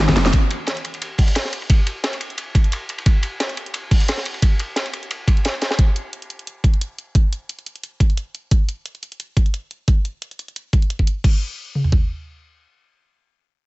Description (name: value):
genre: liquid drum and bass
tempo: 176 BPM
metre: 4/4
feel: swing 54% on 16ths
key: none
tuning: none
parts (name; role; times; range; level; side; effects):
- crunchy breakbeat drum kit; drums; 0.1-5.8 s; hi-hat, ride cymbal, snare drum; -25 LUFS; equal; high-pass filter on cymbals, high-pass filter on hats, high-pass filter on snare, high-pass filter on room
- drum and bass drum kit; drums; 0.1-12.0 s; kick drum, toms; -15 LUFS; equal; overdrive
- drum and bass drum kit; drums; 0.1-11.3 s; crash cymbal, hi-hat, snare drum; -26 LUFS; equal; overdrive
room: small room ambience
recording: nothing above 8.0 kHz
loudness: -18 LUFS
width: side -22 dB against mid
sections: 0.0-11.2 A section; 11.2-13.7 B section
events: drum fill 0.0-0.3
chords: none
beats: | 0.33 0.67 1.01 1.35 | 1.70 2.04 2.38 2.72 | 3.06 3.40 3.74 4.08 | 4.42 4.76 5.11 5.45 | 5.79 6.13 6.47 6.81 | 7.15 7.49 7.83 8.17 | 8.51 8.86 9.20 9.54 | 9.88 10.22 10.56 10.90 | 11.24 11.58 11.92